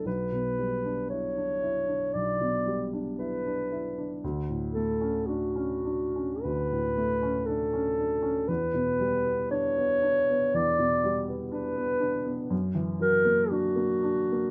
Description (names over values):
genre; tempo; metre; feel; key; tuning
classical, impressionist duo for clarinet and grand piano; 58 BPM; 4/4; uneven beats, rubato; unclear; A4 = 442 Hz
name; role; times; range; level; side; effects
dark clarinet; melody; 0.0-14.5 s; F#4 to D5; -30 LUFS; equal; none
dark baby grand piano; accompaniment; 0.0-14.5 s; B1 to E4; -33 LUFS; equal; none
room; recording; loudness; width
little or no reverb; close, detailed microphones; -28 LUFS; mono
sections
0.0-14.5 A section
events
none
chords
0.1 Em7/B; 4.2 Dmaj7; 8.5 Em7; 12.5 F#aug7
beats
| 0.06 1.10 2.13 3.18 | 4.22 5.26 6.42 7.47 | 8.49 9.52 10.55 11.54 | 12.52 13.51